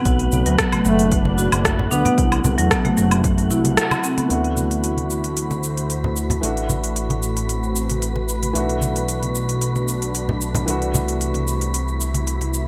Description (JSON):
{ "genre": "organic downtempo", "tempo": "113 BPM", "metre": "4/4", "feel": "straight", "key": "A dorian", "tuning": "A4 = 440 Hz", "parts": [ { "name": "warm analog pad", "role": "sustained chords", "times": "0.0-12.7 s", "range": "A2 to C5", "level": "-30 LUFS", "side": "equal", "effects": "chorus, sidechain pumping" }, { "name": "marimba with soft mallets", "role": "arpeggios", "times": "0.0-4.3 s", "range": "F#3 to F#4", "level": "-24 LUFS", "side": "equal", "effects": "delay" }, { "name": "wind-like tuned noise texture", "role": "texture", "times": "0.0-12.7 s", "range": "F#5 to B5", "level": "-36 LUFS", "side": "equal", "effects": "built-in reverb, lush chorus" }, { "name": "smooth gliding synth bass", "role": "bass", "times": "0.1-12.7 s", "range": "F#1 to E2", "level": "-26 LUFS", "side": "equal", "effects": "tube saturation, sidechain pumping" }, { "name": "electronic kick drum", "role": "drums", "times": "0.1-3.4 s", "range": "none", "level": "-25 LUFS", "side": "equal", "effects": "none" }, { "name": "organic electronic drum kit", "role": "drums", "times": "0.1-12.6 s", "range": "hi-hat, rim click, shaker, woodblock", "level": "-26 LUFS", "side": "equal", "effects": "none" }, { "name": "congas", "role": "percussion", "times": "0.3-12.5 s", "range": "none", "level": "-27 LUFS", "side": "equal", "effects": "none" }, { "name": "warm duduk", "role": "melody", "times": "0.8-2.2 s", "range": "A3 to B3", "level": "-27 LUFS", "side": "equal", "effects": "digital delay" }, { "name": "felt-muted upright piano", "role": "accompaniment", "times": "4.3-12.7 s", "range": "E3 to F#4", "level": "-30 LUFS", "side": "equal", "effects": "sidechain pumping, delay" } ], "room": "moderate plate reverb, RT60 1.4 s, small room reverb", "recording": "bright 1980s-style digital production", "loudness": "-20 LUFS", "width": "mono", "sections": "0.0-4.3 A section; 4.3-12.7 B section", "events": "filter sweep on marimba 0.0-4.3; band accent 3.8", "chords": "0.1 Bm7; 2.2 Am69; 4.3 D9; 6.4 Am69; 8.6 Bm7; 10.7 Am69/C" }